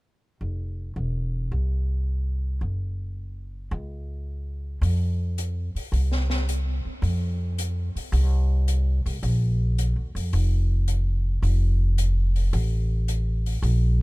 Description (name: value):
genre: jazz piano trio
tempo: 109 BPM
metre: 4/4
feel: swing 69% on 8ths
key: unclear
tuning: A4 = 443 Hz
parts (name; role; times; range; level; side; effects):
- upright bass; bass; 0.4-14.0 s; E1 to F2; -23 LUFS; equal; none
- open jazz drum kit; drums; 4.8-13.8 s; hi-hat, snare drum; -36 LUFS; left 2 dB; none
room: little or no reverb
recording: none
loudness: -22 LUFS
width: side -23 dB against mid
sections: 0.4-4.8 A section; 4.8-14.0 B section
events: none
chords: none